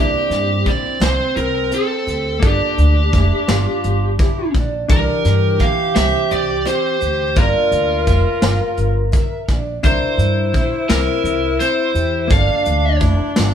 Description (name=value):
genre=progressive instrumental, band music in an uneven meter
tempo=170 BPM (eighths)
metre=7/8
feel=straight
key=unclear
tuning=A4 = 440 Hz
part: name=lead guitar through a small cranked amp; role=melody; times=0.0-13.0 s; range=G4 to F5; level=-20 LUFS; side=left 2 dB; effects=overdrive
part: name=breathy alto saxophone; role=second line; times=0.0-13.5 s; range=C4 to G4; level=-24 LUFS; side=right 2 dB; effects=none
part: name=hollow-body jazz guitar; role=accompaniment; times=0.0-13.5 s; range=E3 to Bb4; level=-28 LUFS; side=left 3 dB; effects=none
part: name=picked twelve-string acoustic guitar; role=arpeggios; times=0.0-13.5 s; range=E3 to E5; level=-25 LUFS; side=right 2 dB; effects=none
part: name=upright bass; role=bass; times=0.0-13.5 s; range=F1 to G2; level=-19 LUFS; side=equal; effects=none
part: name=vintage brush drum kit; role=drums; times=0.3-13.5 s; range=hi-hat, kick drum, snare drum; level=-18 LUFS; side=equal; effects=none
room=moderate stone room reverb, RT60 1.0 s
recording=band playing live in one room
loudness=-14 LUFS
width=side -8 dB against mid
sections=0.0-13.5 A section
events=none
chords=0.0 C7; 2.4 Gm7; 4.9 C7; 7.4 Gm7; 9.8 C7; 12.3 Gm7